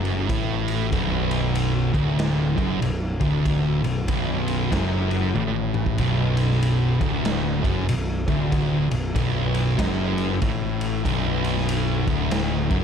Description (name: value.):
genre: stoner and doom metal.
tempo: 95 BPM.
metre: 4/4.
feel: swing 61% on 8ths.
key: B minor.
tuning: A4 = 440 Hz.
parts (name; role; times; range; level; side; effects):
thick fuzz guitar; riff; 0.0-12.8 s; B1 to A2; -25 LUFS; left 8 dB; distortion.
thick fuzz guitar; riff; 0.0-12.8 s; B1 to A2; -25 LUFS; right 10 dB; distortion.
fuzz picked electric bass; bass; 0.0-12.8 s; B0 to A1; -28 LUFS; equal; overdrive.
raw garage drum kit; drums; 0.0-12.8 s; kick drum, ride cymbal, snare drum, toms; -28 LUFS; equal; none.
room: light reverb.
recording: none.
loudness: -20 LUFS.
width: side -7 dB against mid.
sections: 0.0-12.8 A section.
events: drum fill 5.3-6.0.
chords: 0.0 Bm.